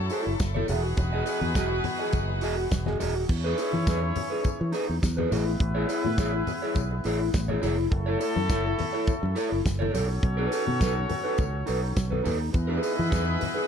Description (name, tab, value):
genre	disco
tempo	104 BPM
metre	4/4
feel	straight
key	E major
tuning	A4 = 445 Hz
part	rich studio string section	sustained chords	0.0-3.3, 12.5-13.7 s	E3 to D#5	-36 LUFS	left 3 dB	none
part	clear horn section	stabs	0.0-13.7 s	A3 to C#5	-33 LUFS	left 1 dB	none
part	fingered electric bass	bass	0.0-13.4 s	D#1 to E3	-28 LUFS	equal	none
part	electric guitar at the edge of break-up	accompaniment	0.1-13.7 s	D#4 to E5	-29 LUFS	equal	spring reverb
part	damped 70s drum kit	drums	0.1-13.6 s	crash cymbal, hi-hat, kick drum, snare drum	-30 LUFS	right 1 dB	none
part	tambourine	percussion	0.1-13.3 s	none	-44 LUFS	left 8 dB	none
part	congas	percussion	0.4-13.6 s	none	-36 LUFS	left 5 dB	none
room	little or no reverb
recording	dark, warm production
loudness	-24 LUFS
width	side -7 dB against mid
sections	0.0-3.3 A section; 3.3-13.7 A section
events	none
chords	0.0 F#m7; 0.7 Emaj9; 3.3 Emaj7; 5.3 Amaj7; 7.9 F#m7; 9.9 B7; 12.5 Emaj7